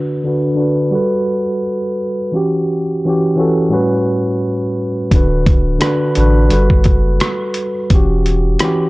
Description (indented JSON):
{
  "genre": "lo-fi hip hop",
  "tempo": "86 BPM",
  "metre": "4/4",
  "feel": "swing 56% on 16ths",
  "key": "E dorian",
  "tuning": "A4 = 440 Hz",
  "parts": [
    { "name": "tine electric piano", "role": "accompaniment", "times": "0.0-8.9 s", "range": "A2 to B4", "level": "-15 LUFS", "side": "equal", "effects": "medium stereo tremolo, low-pass filter" },
    { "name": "sub bass with octave", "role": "bass", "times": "5.1-8.6 s", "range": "D1 to A1", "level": "-15 LUFS", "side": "equal", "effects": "none" },
    { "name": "lo-fi sampler-style drum kit", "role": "drums", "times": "5.1-8.8 s", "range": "hi-hat, kick drum, rim click", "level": "-14 LUFS", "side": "equal", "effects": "none" }
  ],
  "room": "digital ambience",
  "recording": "dry, gritty hardware recording, cassette tape, nothing above 10.6 kHz",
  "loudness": "-13 LUFS",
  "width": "side -21 dB against mid",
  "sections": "0.0-8.9 A section",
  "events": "filter sweep on tine electric piano 0.0-8.9",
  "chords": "0.0 D6; 0.9 Gmaj9; 2.3 Em69; 3.7 A13; 5.1 D6; 6.5 Gmaj9; 7.9 Em69",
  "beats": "0.23 0.93 1.63 | 2.32 3.02 3.72 4.42 | 5.12 5.81 6.51 7.21 | 7.91 8.60"
}